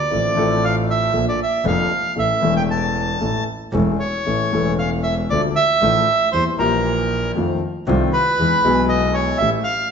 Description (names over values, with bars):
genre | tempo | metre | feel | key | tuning
tango | 117 BPM | 4/4 | rubato | unclear | A4 = 441 Hz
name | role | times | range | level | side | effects
bandoneon | melody | 0.0-9.9 s | Bb4 to A5 | -19 LUFS | right 2 dB | none
warm grand piano | accompaniment | 0.1-9.6 s | E1 to A4 | -21 LUFS | left 3 dB | none
clear double bass | bass | 0.1-9.6 s | E1 to F2 | -24 LUFS | right 2 dB | none
room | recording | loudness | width
wet stone room reverb, RT60 1.3 s | band playing live in one room, nothing above 7.8 kHz | -16 LUFS | side -6 dB against mid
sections
0.0-9.9 A section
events
none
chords
0.1 Dm7/A; 1.1 Bbmaj7; 2.2 A; 5.3 Dm; 6.3 Edim; 7.4 F7; 8.4 E; 9.4 A7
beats
| 0.12 0.63 1.14 1.65 | 2.17 2.69 3.21 3.74 | 4.26 4.78 5.30 5.82 | 6.33 6.85 7.36 7.87 | 8.38 8.89 9.40